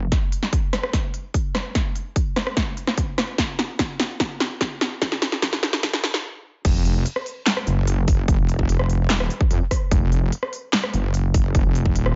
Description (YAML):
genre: heavy wobble dubstep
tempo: 147 BPM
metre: 4/4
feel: half-time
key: unclear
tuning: A4 = 439 Hz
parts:
  - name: wobble bass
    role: bass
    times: 0.0-0.1, 6.6-12.2 s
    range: Eb1 to F2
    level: -23 LUFS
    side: equal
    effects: chorus, overdrive
  - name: big-room dance drum kit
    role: drums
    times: 0.1-12.1 s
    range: crash cymbal, handclaps, hi-hat, rim click, snare drum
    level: -26 LUFS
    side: equal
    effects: overdrive
  - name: electronic kick drum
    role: drums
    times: 0.1-11.9 s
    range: none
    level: -24 LUFS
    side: equal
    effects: none
room: little or no reverb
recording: high-pass filter, nothing above 7.6 kHz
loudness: -22 LUFS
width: mono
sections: 0.1-6.6 A section; 6.6-12.2 B section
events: build-up 0.1-6.6; drum fill 0.1-6.2; filter sweep 0.1-6.6; stop 6.2-6.6; drop 6.6-12.2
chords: none